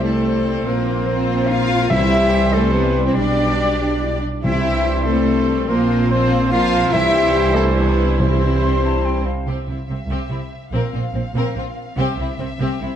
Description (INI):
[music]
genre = cinematic, heroic adventure film score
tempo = 143 BPM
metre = 3/4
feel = straight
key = C major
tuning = A4 = 445 Hz
[part]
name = rich symphonic violin section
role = melody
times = 0.0-13.0 s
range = C4 to F5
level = -30 LUFS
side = left 5 dB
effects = none
[part]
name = mellow clarinet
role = second line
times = 0.0-9.2 s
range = A4 to F5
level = -23 LUFS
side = left 2 dB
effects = none
[part]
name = warm symphonic violin section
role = second line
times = 0.0-12.9 s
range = C4 to F5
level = -28 LUFS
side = left 2 dB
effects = none
[part]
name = rich symphonic viola section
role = accompaniment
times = 0.0-12.9 s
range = C3 to E4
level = -25 LUFS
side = left 1 dB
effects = none
[part]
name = mellow French horn section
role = sustained chords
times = 0.0-9.2 s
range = C3 to G4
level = -26 LUFS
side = left 4 dB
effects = none
[part]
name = warm trombone section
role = sustained chords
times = 0.0-9.3 s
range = G2 to Bb3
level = -28 LUFS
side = right 2 dB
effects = none
[part]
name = clear trumpet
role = stabs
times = 0.0-9.2 s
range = C5 to D5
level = -26 LUFS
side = right 2 dB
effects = none
[part]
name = rich studio double bass section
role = bass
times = 0.0-12.9 s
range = Bb1 to C2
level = -22 LUFS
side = right 2 dB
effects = none
[part]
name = rich symphonic cello section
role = bass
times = 0.0-12.9 s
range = Bb2 to F4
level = -23 LUFS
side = right 1 dB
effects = none
[part]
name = timpani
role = percussion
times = 1.9-8.8 s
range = C3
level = -26 LUFS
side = left 1 dB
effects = none
[part]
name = silver concert flute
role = second line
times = 8.6-9.5 s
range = F5 to C6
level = -29 LUFS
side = left 1 dB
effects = none
[sound]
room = wet scoring stage reverb, RT60 1.7 s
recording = dark, warm production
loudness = -16 LUFS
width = side -9 dB against mid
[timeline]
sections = 0.0-9.5 A section; 9.5-13.0 B section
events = none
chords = 0.0 C; 0.7 Bbsus2; 1.9 C; 3.2 G/B; 4.4 C; 5.7 Bbsus2; 6.9 C; 10.7 Bbsus2; 12.0 C